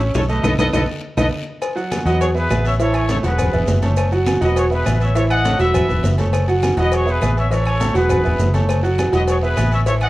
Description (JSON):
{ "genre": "latin, salsa", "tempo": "204 BPM", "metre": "4/4", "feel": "straight", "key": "E major", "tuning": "A4 = 440 Hz", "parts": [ { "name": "bright grand piano", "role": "accompaniment", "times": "0.0-10.1 s", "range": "E3 to C#6", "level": "-20 LUFS", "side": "right 2 dB", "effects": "none" }, { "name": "vintage muted fingered electric bass", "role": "bass", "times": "0.0-10.1 s", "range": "E1 to E2", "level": "-19 LUFS", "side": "equal", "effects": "none" }, { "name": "congas", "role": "percussion", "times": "0.0-10.1 s", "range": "none", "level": "-26 LUFS", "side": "equal", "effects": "none" }, { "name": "maracas", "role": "percussion", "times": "0.0-10.1 s", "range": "none", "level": "-41 LUFS", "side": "right 6 dB", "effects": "none" }, { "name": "timbales and agogo bells", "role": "percussion", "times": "0.0-10.1 s", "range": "none", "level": "-28 LUFS", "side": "right 2 dB", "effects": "none" }, { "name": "warm trumpet section", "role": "melody", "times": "0.1-10.1 s", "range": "G#4 to F#5", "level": "-23 LUFS", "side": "left 1 dB", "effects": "none" }, { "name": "claves", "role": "percussion", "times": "0.1-10.1 s", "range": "none", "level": "-34 LUFS", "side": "equal", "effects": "none" }, { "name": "guiro", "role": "percussion", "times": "0.1-10.1 s", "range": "none", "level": "-38 LUFS", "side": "left 4 dB", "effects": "none" }, { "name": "bongos and cowbell", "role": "percussion", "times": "0.2-10.1 s", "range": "none", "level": "-27 LUFS", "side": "left 4 dB", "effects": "none" } ], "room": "light reverb", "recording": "worn, warbling old tape, cassette tape, warbly pitch drift", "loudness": "-15 LUFS", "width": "side -17 dB against mid", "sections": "0.0-1.6 A section; 1.6-10.1 B section", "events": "band accent 0.4-1.6; drum fill 0.7-1.6", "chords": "0.4 B7; 1.6 Badd11; 2.2 Eadd9; 2.8 A; 3.4 Eadd9; 4.0 F#m7; 4.6 Eadd9; 5.2 A; 5.7 Esus2; 6.9 Eadd9; 7.5 A; 8.1 Eadd9; 8.7 F#m7; 9.3 Eadd9", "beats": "0.15 | 0.44 0.74 1.03 1.32 | 1.62 1.91 2.21 2.50 | 2.80 3.09 3.39 3.68 | 3.98 4.27 4.56 4.86 | 5.15 5.45 5.74 6.04 | 6.33 6.63 6.92 7.22 | 7.51 7.80 8.10 8.39 | 8.69 8.98 9.28 9.57 | 9.87" }